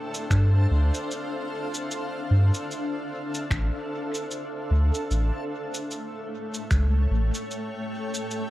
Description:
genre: ambient dub.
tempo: 75 BPM.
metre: 4/4.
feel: swing 58% on 16ths.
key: D minor.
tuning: A4 = 440 Hz.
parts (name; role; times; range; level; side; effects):
granular cloud pad; sustained chords; 0.0-8.5 s; A3 to G5; -32 LUFS; left 1 dB; built-in reverb.
backwards swelling texture; texture; 0.0-8.5 s; A4; -38 LUFS; right 2 dB; built-in reverb.
electronic cabasa and finger snaps; drums; 0.1-8.5 s; none; -35 LUFS; equal; small room reverb.
soft dub sub bass; bass; 0.3-7.3 s; A1 to G2; -20 LUFS; equal; none.
electronic kick drum; drums; 0.3-6.9 s; none; -27 LUFS; equal; small room reverb.
room: light reverb.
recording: none.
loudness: -24 LUFS.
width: side -15 dB against mid.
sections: 0.0-8.5 A section.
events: none.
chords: 0.0 Dm7; 5.1 A7.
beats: 0.31 1.11 | 1.91 2.71 3.51 4.31 | 5.11 5.91 6.71 7.51 | 8.31.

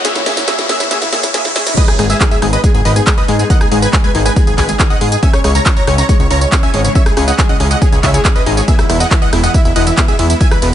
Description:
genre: uplifting trance.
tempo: 139 BPM.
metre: 4/4.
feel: straight.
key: G# minor.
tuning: A4 = 440 Hz.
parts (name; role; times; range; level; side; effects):
big supersaw lead; melody; 0.0-10.7 s; E4 to A#5; -17 LUFS; right 1 dB; sidechain pumping, digital delay.
lush unison pad; sustained chords; 0.0-10.7 s; F#2 to C#5; -24 LUFS; equal; chorus, sidechain pumping.
analog pluck; arpeggios; 0.0-10.7 s; E2 to C#5; -21 LUFS; left 4 dB; chorus, sidechain pumping, digital delay.
techno drum kit; drums; 0.0-10.7 s; crash cymbal, handclaps, hi-hat, ride cymbal, rim click, snare drum, tambourine; -18 LUFS; right 1 dB; none.
riser; sound effects; 0.0-1.8 s; none; -20 LUFS; left 2 dB; none.
electronic kick drum; drums; 1.8-10.5 s; none; -12 LUFS; equal; none.
fat analog bass; bass; 2.0-10.7 s; E1 to G#2; -14 LUFS; equal; sidechain pumping.
room: digital ambience.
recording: high-pass filter, nothing above 10.5 kHz.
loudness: -10 LUFS.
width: side -11 dB against mid.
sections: 0.0-1.8 A section; 1.8-10.7 B section.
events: build-up 0.0-1.8; drum fill 0.0-1.8; riser 0.0-1.8; drop 1.8-10.7.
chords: 0.0 F#; 1.8 G#m; 5.2 C#m; 8.7 E.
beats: | 0.05 0.48 0.91 1.34 | 1.77 2.21 2.64 3.07 | 3.50 3.93 4.36 4.79 | 5.23 5.66 6.09 6.52 | 6.95 7.38 7.82 8.25 | 8.68 9.11 9.54 9.97 | 10.41.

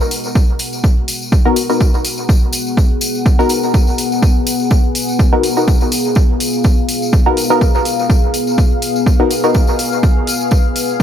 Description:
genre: dub techno.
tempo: 124 BPM.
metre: 4/4.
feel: swing 55% on 16ths.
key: unclear.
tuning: A4 = 440 Hz.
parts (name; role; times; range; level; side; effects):
deep dark ambient pad; sustained chords; 0.0-11.0 s; Cb4 to Gb5; -19 LUFS; left 2 dB; chorus, built-in reverb, sidechain pumping.
tambourine; percussion; 0.0-11.0 s; none; -24 LUFS; left 2 dB; none.
electronic hi-hat; drums; 0.1-10.9 s; none; -25 LUFS; right 2 dB; overdrive, small room ambience.
electronic kick drum; drums; 0.4-11.0 s; none; -12 LUFS; equal; overdrive, small room ambience.
filtered dub chord stab; stabs; 1.5-9.6 s; Cb4 to Bb4; -17 LUFS; left 1 dB; chorus, phaser, sidechain pumping, dub echo.
room: little or no reverb.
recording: none.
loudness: -12 LUFS.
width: side -9 dB against mid.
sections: 0.0-11.0 A section.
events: none.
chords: 0.0 Abm7.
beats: 0.35 0.84 | 1.32 1.81 2.29 2.77 | 3.26 3.74 4.22 4.71 | 5.19 5.68 6.16 6.64 | 7.13 7.61 8.10 8.58 | 9.06 9.55 10.03 10.52 | 11.00.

